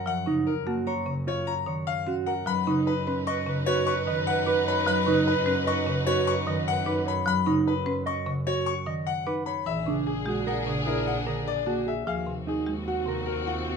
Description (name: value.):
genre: classical, minimalist pattern music.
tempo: 150 BPM.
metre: 6/4.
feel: straight.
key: unclear.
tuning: A4 = 440 Hz.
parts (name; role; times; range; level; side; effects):
bright concert grand piano; melody; 0.0-13.7 s; G#4 to C#6; -30 LUFS; left 9 dB; none.
mellow electric guitar; arpeggios; 0.0-13.7 s; D4 to D#5; -30 LUFS; right 6 dB; none.
clear double bass; bass; 0.0-13.8 s; A#1 to F#2; -34 LUFS; right 3 dB; none.
folk marimba with medium hard mallets; accompaniment; 0.1-13.3 s; C3 to D#4; -31 LUFS; left 1 dB; none.
warm clarinet; second line; 2.5-13.8 s; Gb4 to B4; -32 LUFS; right 5 dB; none.
rich chamber string section; sustained chords; 2.5-13.8 s; C4 to B4; -32 LUFS; left 2 dB; none.
room: moderate large studio reverb, RT60 0.8 s.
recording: none.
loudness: -24 LUFS.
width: side -6 dB against mid.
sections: 0.0-12.1 A section; 12.1-13.8 B section.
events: none.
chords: 0.0 F#maj7; 2.5 B/F#; 9.7 A#7alt; 12.1 Ebm69.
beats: | 0.07 0.47 0.87 1.27 1.67 2.07 | 2.47 2.87 3.27 3.67 4.07 4.47 | 4.87 5.27 5.67 6.07 6.47 6.87 | 7.27 7.67 8.07 8.47 8.87 9.27 | 9.67 10.07 10.47 10.87 11.27 11.67 | 12.07 12.47 12.87 13.27 13.67.